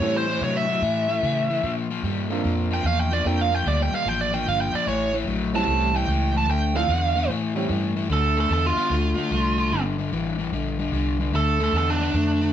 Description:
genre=electric blues shuffle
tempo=148 BPM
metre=4/4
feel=swing 66% on 8ths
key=D minor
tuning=A4 = 440 Hz
part: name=biting lead guitar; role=melody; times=0.0-12.5 s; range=D4 to A5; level=-24 LUFS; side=right 3 dB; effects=overdrive
part: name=warm upright piano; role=accompaniment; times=0.0-7.7 s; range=F3 to A4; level=-29 LUFS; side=right 4 dB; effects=none
part: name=crunchy overdriven guitar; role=riff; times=0.0-12.5 s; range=G2 to B3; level=-26 LUFS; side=left 5 dB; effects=none
part: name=vintage muted fingered electric bass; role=bass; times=0.0-12.5 s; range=G1 to C#3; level=-26 LUFS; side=right 1 dB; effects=none
room=moderate studio reverb, RT60 0.6 s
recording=band playing live in one room, nothing above 10.6 kHz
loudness=-21 LUFS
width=side -10 dB against mid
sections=0.0-8.1 A section; 8.1-12.5 B section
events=lead electric guitar solo 0.0-8.1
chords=0.0 A7#9; 1.6 Bbmaj7; 4.9 A7#9; 6.5 Dm9; 7.3 A7#9; 8.1 Dm9; 9.7 Gmadd9; 11.3 Dmadd9

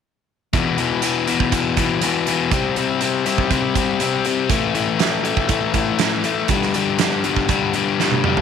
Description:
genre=classic rock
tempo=120 BPM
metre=4/4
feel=straight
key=E minor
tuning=A4 = 440 Hz
part: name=biting overdriven guitar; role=riff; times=0.5-8.4 s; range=E2 to C4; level=-18 LUFS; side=left 8 dB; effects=none
part: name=big rock drum kit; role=drums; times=0.5-8.4 s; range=hi-hat, kick drum, snare drum, toms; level=-22 LUFS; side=right 6 dB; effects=none
room=light reverb, studio reverb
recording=1960s-style stereo with parts hard left and right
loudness=-17 LUFS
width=side -7 dB against mid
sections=0.5-8.4 A section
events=drum fill 8.0-8.4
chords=0.5 E5; 2.5 C5; 4.5 A5; 6.5 G5

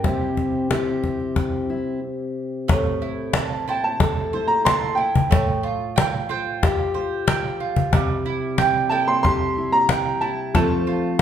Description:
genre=acoustic folk duo or small band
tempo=92 BPM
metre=4/4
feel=straight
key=unclear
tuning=A4 = 440 Hz
part: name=clear upright piano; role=melody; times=0.0-11.2 s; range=G5 to C6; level=-23 LUFS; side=right 1 dB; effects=none
part: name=fingerpicked steel-string acoustic guitar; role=accompaniment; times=0.0-11.2 s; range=A2 to A4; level=-25 LUFS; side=left 2 dB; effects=none
part: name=cajon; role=percussion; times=0.0-11.2 s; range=none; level=-21 LUFS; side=left 2 dB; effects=none
part: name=mandolin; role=arpeggios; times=2.7-11.2 s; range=G3 to A5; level=-26 LUFS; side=right 7 dB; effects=none
room=wet large studio reverb, RT60 1.1 s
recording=band playing live in one room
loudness=-19 LUFS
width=side -9 dB against mid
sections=0.0-2.7 A section; 2.7-11.2 B section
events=stop 2.0-2.7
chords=0.1 C; 2.7 Am; 5.3 Fadd9/A; 7.9 C6; 10.5 F

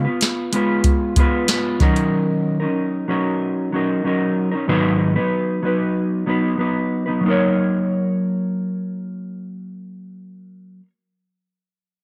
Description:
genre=indie pop, bedroom pop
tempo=94 BPM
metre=4/4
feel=straight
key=F# major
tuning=A4 = 440 Hz
part: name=mellow electric guitar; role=accompaniment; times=0.0-10.9 s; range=G#2 to C#5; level=-21 LUFS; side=equal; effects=lush chorus, warbly pitch drift
part: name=soft vintage rhythm box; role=drums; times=0.2-2.1 s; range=hi-hat, kick drum, snare drum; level=-20 LUFS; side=equal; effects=none
room=moderate spring reverb, RT60 1.7 s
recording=none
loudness=-20 LUFS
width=mono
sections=0.0-7.2 A section; 7.2-9.8 B section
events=none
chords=0.0 C#7 (rootless); 1.8 D#m7; 4.7 G#m7; 7.2 F#6

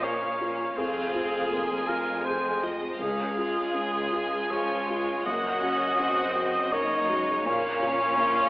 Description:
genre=cinematic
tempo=81 BPM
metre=3/4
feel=rubato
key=Bb minor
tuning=A4 = 438 Hz
part: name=rich symphonic violin section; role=melody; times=0.0-8.5 s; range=Eb5 to Ab5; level=-35 LUFS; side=equal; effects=none
part: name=rich studio violin section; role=second line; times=0.0-8.5 s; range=C4 to Gb4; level=-34 LUFS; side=left 1 dB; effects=none
part: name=warm oboe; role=second line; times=0.0-8.5 s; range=Ab4 to Eb5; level=-27 LUFS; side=equal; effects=none
part: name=clear symphonic viola section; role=accompaniment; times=0.0-8.5 s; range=F3 to Db4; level=-34 LUFS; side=equal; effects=none
part: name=felt-muted upright piano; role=accompaniment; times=0.0-8.5 s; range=Db2 to Bb4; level=-33 LUFS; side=left 1 dB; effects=none
part: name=rich symphonic cello section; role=bass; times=0.0-8.5 s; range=Db2 to Bb2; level=-36 LUFS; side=equal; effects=none
part: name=rich symphonic double bass section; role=bass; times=0.0-8.5 s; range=F1 to Db2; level=-42 LUFS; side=right 1 dB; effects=none
room=wet scoring stage reverb, RT60 1.8 s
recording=telephone sound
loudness=-24 LUFS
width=side -20 dB against mid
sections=0.0-8.5 A section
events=none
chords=0.0 Bbm; 0.8 Fm; 3.0 Db; 5.3 Gb6; 7.5 Bbm

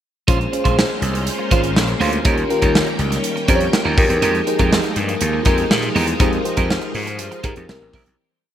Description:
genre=polished 1980s jazz-funk pop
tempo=121 BPM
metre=4/4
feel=straight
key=F minor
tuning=A4 = 440 Hz
part: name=bell-like FM electric piano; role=accompaniment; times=0.3-8.2 s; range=C4 to Db5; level=-22 LUFS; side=left 1 dB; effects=tremolo, wide subtle chorus
part: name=string machine, violins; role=sustained chords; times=0.3-8.2 s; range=Eb3 to G5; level=-25 LUFS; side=left 1 dB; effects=ensemble chorus
part: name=clean electric guitar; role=riff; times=0.3-8.1 s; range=G3 to C5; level=-25 LUFS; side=right 5 dB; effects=analog chorus
part: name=gritty slap bass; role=bass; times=0.3-8.2 s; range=Ab1 to Bb2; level=-21 LUFS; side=equal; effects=overdrive
part: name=modern studio drum kit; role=drums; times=0.3-8.2 s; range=hi-hat, kick drum, snare drum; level=-19 LUFS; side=equal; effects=gated reverb
room=moderate plate reverb, RT60 2.1 s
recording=bright 1980s-style digital production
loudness=-15 LUFS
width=side -10 dB against mid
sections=0.3-8.2 pre-chorus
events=fade-out 6.2-8.2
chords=0.3 Bbm9; 2.3 Eb7; 4.0 Fm11; 7.7 C7

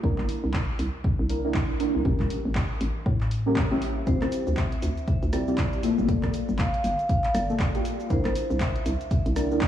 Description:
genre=deep house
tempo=119 BPM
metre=4/4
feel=swing 59% on 16ths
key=unclear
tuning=A4 = 439 Hz
part: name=deep mellow chord stab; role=stabs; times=0.0-9.7 s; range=Bb3 to E5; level=-28 LUFS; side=equal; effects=chorus, phaser, sidechain pumping, tape echo
part: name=hollow knocking FM bass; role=bass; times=0.0-9.7 s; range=D1 to A2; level=-28 LUFS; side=equal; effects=tube saturation, sidechain pumping
part: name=electronic kick drum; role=drums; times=0.0-9.7 s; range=none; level=-26 LUFS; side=equal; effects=none
part: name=punchy analog drum machine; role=drums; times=0.2-9.7 s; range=handclaps, hi-hat, rim click, shaker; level=-35 LUFS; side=equal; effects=none
part: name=vibraphone with medium mallets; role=melody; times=4.1-9.7 s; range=C5 to F5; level=-31 LUFS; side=right 1 dB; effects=tape echo
room=moderate lush hall reverb, RT60 1.9 s, digital ambience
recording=dreamy mix soaked in reverb, cassette tape, small room ambience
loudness=-23 LUFS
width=side -11 dB against mid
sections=0.0-9.7 A section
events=none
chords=0.0 C9; 2.1 A7b9; 4.1 Dm11; 5.8 Gm9; 7.9 C9

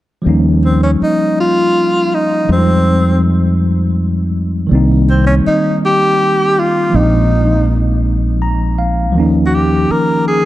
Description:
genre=slow six-eight R&B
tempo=54 BPM (dotted quarters)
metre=6/8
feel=straight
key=unclear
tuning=A4 = 439 Hz
part: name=tine electric piano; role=accompaniment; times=0.2-10.5 s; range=Eb3 to Bb5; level=-15 LUFS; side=equal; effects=medium stereo tremolo
part: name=mellow fretless electric bass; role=bass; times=0.3-9.9 s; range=Bb1 to F2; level=-13 LUFS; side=equal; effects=none
part: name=breathy tenor saxophone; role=melody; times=0.6-10.5 s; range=C4 to Bb4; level=-15 LUFS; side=equal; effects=none
room=light reverb, small room reverb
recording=dark, warm production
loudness=-11 LUFS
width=side -15 dB against mid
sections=0.3-10.5 A section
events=tine electric piano fill 8.0-9.1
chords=0.3 Eb9; 2.5 Fm7; 4.7 Cm7; 6.9 Bb9sus4; 9.1 Ebsus2

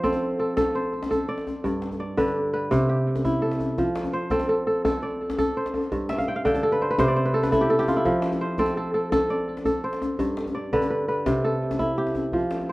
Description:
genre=west african traditional, West African string and xylophone music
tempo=112 BPM (dotted quarters)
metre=12/8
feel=straight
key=F lydian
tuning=A4 = 440 Hz
part: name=kora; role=arpeggios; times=0.0-12.7 s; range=G2 to A5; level=-23 LUFS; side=equal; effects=tape echo
part: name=djembe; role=percussion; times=0.0-12.7 s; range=none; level=-30 LUFS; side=left 2 dB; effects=none
room=moderate studio reverb, RT60 0.5 s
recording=worn, warbling old tape, cassette tape, warbly pitch drift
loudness=-22 LUFS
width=side -20 dB against mid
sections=0.0-3.8 A section; 3.8-12.7 B section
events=kora fill 6.1-8.1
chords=0.0 F; 1.6 G; 2.7 C; 3.8 F; 5.9 G5; 7.0 C; 8.1 F; 10.2 G; 11.3 C

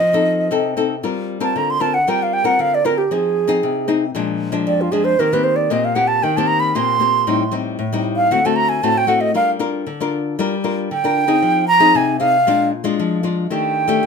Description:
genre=samba and choro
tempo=116 BPM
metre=4/4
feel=straight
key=G minor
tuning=A4 = 440 Hz
part: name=wooden flute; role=melody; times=0.0-14.1 s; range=F4 to C6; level=-16 LUFS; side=right 3 dB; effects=none
part: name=nylon-string guitar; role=accompaniment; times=0.0-14.1 s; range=F2 to Bb4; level=-19 LUFS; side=left 5 dB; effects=none
room=moderate studio reverb, RT60 0.6 s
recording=minimal, uncompressed stereo recording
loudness=-15 LUFS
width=side -5 dB against mid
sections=0.0-1.0 A section; 1.0-14.1 B section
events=flute solo 1.0-14.1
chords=0.0 F7; 1.0 Gm7; 3.1 Fm7; 4.2 Bb7; 5.2 Eb6; 7.3 Am7b5; 8.3 D7; 9.3 Gm7; 11.4 Fm7; 12.5 Bb7; 13.5 Ebmaj7#11

